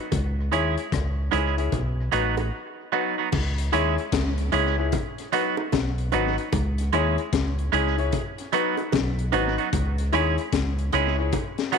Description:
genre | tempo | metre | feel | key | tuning
roots reggae | 75 BPM | 4/4 | swing 63% on 16ths | C# minor | A4 = 440 Hz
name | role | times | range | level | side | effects
deep dub fingered electric bass | bass | 0.1-11.3 s | G#1 to D#2 | -25 LUFS | equal | none
crunchy breakbeat drum kit | drums | 0.1-11.8 s | crash cymbal, hi-hat, kick drum, rim click, snare drum | -29 LUFS | left 5 dB | tape echo
bongos | percussion | 0.1-11.6 s | none | -33 LUFS | right 11 dB | none
clean electric guitar | accompaniment | 0.5-11.8 s | F#3 to G#4 | -27 LUFS | right 12 dB | tape echo
warm upright piano | stabs | 0.5-11.8 s | D#4 to C#5 | -30 LUFS | left 12 dB | none
room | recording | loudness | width
moderate echo chamber reverb, RT60 2.3 s | 1960s-style stereo with parts hard left and right | -22 LUFS | side -6 dB against mid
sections
0.0-3.3 A section; 3.3-11.8 B section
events
break 2.5-3.3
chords
0.1 C#m; 1.7 B; 3.3 C#m; 4.9 B; 6.5 C#m; 8.1 B; 9.7 C#m

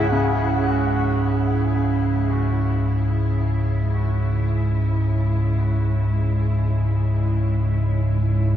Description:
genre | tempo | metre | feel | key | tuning
dark ambient drone | free time | none | none | C# minor | A4 = 440 Hz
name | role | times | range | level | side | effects
muted studio cello section | sustained chords | 0.0-8.6 s | C#3 to E4 | -29 LUFS | equal | shimmer reverb
bright concert grand piano | arpeggios | 0.0-8.6 s | C#3 to G#4 | -27 LUFS | right 2 dB | shimmer reverb, diffuse ambient delay
deep rumbling drone | drone | 0.0-8.6 s | C#2 to G#2 | -20 LUFS | equal | built-in reverb
room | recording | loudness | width
wet cathedral reverb, RT60 5.2 s | worn, warbling old tape, cassette tape, warbly pitch drift | -19 LUFS | side -10 dB against mid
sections
0.1-8.6 A section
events
none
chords
0.1 C#m

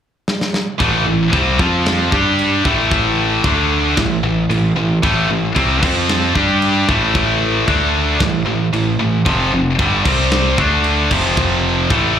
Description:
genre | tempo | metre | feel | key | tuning
heavy metal | 114 BPM | 4/4 | straight | A minor | A4 = 440 Hz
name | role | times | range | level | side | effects
tight metal drum kit | drums | 0.3-12.0 s | crash cymbal, kick drum, snare drum | -21 LUFS | equal | none
heavy high-gain guitar | riff | 0.8-12.2 s | F2 to G4 | -15 LUFS | equal | distortion, slapback echo
growling picked electric bass | bass | 0.8-12.2 s | F1 to G2 | -20 LUFS | equal | overdrive
room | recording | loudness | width
light reverb | live gig heard through the venue's PA, club reverb | -13 LUFS | side -8 dB against mid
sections
0.8-12.2 A section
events
drum fill 0.3-0.8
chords
0.0 N.C.; 0.8 Am; 1.6 F5; 2.1 G5; 2.6 A5; 3.4 D5; 4.0 Am; 5.8 F5; 6.3 G5; 6.9 A5; 7.7 D5; 8.2 A5; 9.3 F5; 10.1 C5; 10.6 D5; 11.1 F5

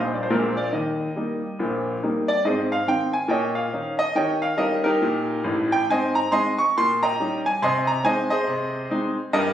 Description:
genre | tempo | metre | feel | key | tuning
jazz, stride piano | 139 BPM | 4/4 | swing 60% on 8ths | Ab major | A4 = 440 Hz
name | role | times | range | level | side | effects
clear grand piano | solo | 0.0-9.5 s | A1 to Db6 | -20 LUFS | equal | none
room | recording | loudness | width
moderate small room ambience, RT60 0.5 s | recorded on a phone in the room, studio reverb, compression | -20 LUFS | side -10 dB against mid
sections
0.0-2.4 A section; 2.4-9.5 B section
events
none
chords
0.3 Bb7; 0.7 Eb; 2.4 Ab; 3.3 Eb5/Bb; 4.2 Eb7; 5.9 Ab; 6.7 Eb7/Bb; 7.6 Ab/C

